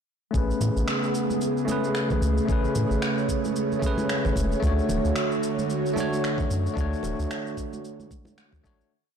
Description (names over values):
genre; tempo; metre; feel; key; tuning
sunset chillout; 112 BPM; 4/4; swing 58% on 16ths; A major; A4 = 440 Hz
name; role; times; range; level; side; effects
barky tine electric piano; accompaniment; 0.3-8.9 s; A3 to C#5; -28 LUFS; moving between left 6 dB and right 6 dB; auto-pan, low-pass filter, digital delay
airy breathy pad; sustained chords; 0.5-8.9 s; C#3 to C#5; -29 LUFS; right 1 dB; chorus
warm sub bass; bass; 0.3-8.8 s; D1 to A2; -26 LUFS; equal; none
electronic cabasa and finger snaps; drums; 0.3-8.9 s; none; -34 LUFS; equal; soft clipping on snare
electronic kick drum; drums; 0.3-8.8 s; none; -28 LUFS; equal; none
congas; percussion; 0.6-8.8 s; none; -35 LUFS; right 2 dB; none
room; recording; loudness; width
light reverb, digital ambience; blown-out, overdriven recording, overdrive; -23 LUFS; side -7 dB against mid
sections
0.3-8.9 groove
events
fade-out 6.1-8.9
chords
0.3 Amaj9; 4.6 Dmaj7